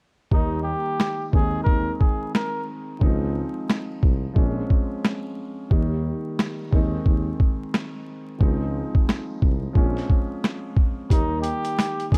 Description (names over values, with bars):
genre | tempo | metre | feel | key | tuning
hip hop, boom-bap hip-hop | 89 BPM | 4/4 | swing 60% on 16ths | unclear | A4 = 444 Hz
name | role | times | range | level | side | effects
trumpet with cup mute | melody | 0.3-2.6, 11.1-12.2 s | Eb4 to Bb4 | -30 LUFS | equal | high-pass filter, low-pass filter, slapback echo
dark baby grand piano | accompaniment | 0.3-12.2 s | Eb3 to Eb4 | -32 LUFS | equal | cassette tape, high-pass filter, low-pass filter
mellow tuba | bass | 0.3-12.2 s | Bb1 to Eb2 | -29 LUFS | equal | none
boom bap sampler-style drum kit | drums | 0.3-12.2 s | hi-hat, kick drum, snare drum | -22 LUFS | equal | none
room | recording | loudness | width
small room ambience | dark, warm production, vinyl crackle | -23 LUFS | mono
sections
0.3-12.2 A section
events
hi-hats muted 0.3-11.1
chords
0.3 Eb; 1.3 Ab/Eb; 3.0 Dbmaj7; 4.4 Bbm7; 5.7 Eb; 6.7 Ab/Eb; 8.4 Dbmaj7; 9.8 Bbm7; 11.1 Eb